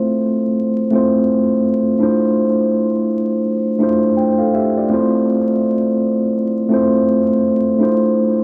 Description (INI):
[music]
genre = hip hop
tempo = 83 BPM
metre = 4/4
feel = swing 61% on 16ths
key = unclear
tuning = A4 = 442 Hz
[part]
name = mellow tine electric piano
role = solo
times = 0.0-8.4 s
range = A3 to G5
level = -16 LUFS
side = equal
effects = cassette tape, low-pass filter, tape echo
[sound]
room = moderate plate reverb, RT60 2.7 s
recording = vinyl crackle, small room ambience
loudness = -16 LUFS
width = mono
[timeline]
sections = 0.0-8.4 A section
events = none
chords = 0.0 Fmaj7; 2.0 Dm9; 4.9 Fmaj7